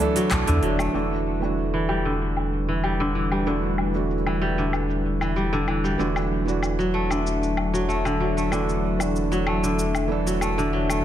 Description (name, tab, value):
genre	organic downtempo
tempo	95 BPM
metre	4/4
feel	straight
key	E minor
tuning	A4 = 437 Hz
part	felt-muted upright piano	accompaniment	0.0-11.0 s	E3 to A4	-29 LUFS	right 6 dB	sidechain pumping, tape echo
part	warm analog pad	sustained chords	0.0-11.0 s	F#3 to D5	-31 LUFS	left 1 dB	chorus, sidechain pumping
part	kora	arpeggios	0.0-11.0 s	D3 to A3	-25 LUFS	left 1 dB	low-pass filter, tape echo
part	organic electronic drum kit	drums	0.2-11.0 s	cabasa, handclaps, hi-hat, woodblock	-32 LUFS	left 2 dB	low-pass filter on hats, low-pass filter on perc, low-pass filter on snare, low-pass filter on room
part	warm sub bass	bass	0.3-11.0 s	E1 to E2	-27 LUFS	equal	sidechain pumping
part	udu	percussion	0.5-0.6 s	none	-29 LUFS	equal	none
room	light reverb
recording	none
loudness	-21 LUFS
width	side -11 dB against mid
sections	0.9-11.0 A section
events	filter sweep on drum 0.9-11.0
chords	0.0 D; 0.9 Em7; 6.0 D/E